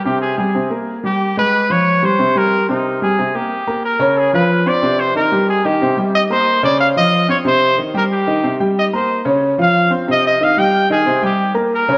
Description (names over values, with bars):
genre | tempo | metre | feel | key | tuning
latin | 183 BPM | 4/4 | straight | unclear | A4 = 439 Hz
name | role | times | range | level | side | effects
clear trumpet | melody | 0.0-12.0 s | Eb4 to G5 | -18 LUFS | equal | none
warm grand piano | accompaniment | 0.1-12.0 s | C3 to C6 | -19 LUFS | equal | none
room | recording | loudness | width
wet plate reverb, RT60 2.6 s | heard from further back in the room | -16 LUFS | mono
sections
0.0-3.5 A section; 3.5-12.0 B section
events
none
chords
0.2 Abmaj7; 0.9 Gm; 1.5 Db; 2.2 C5; 2.9 Abmaj7; 3.5 Gdim; 4.2 Db7; 4.8 Cm; 6.1 Bbm69; 6.8 Db; 7.5 Cm; 8.8 Bbm69; 9.4 Db; 10.1 Cm; 11.4 Gdim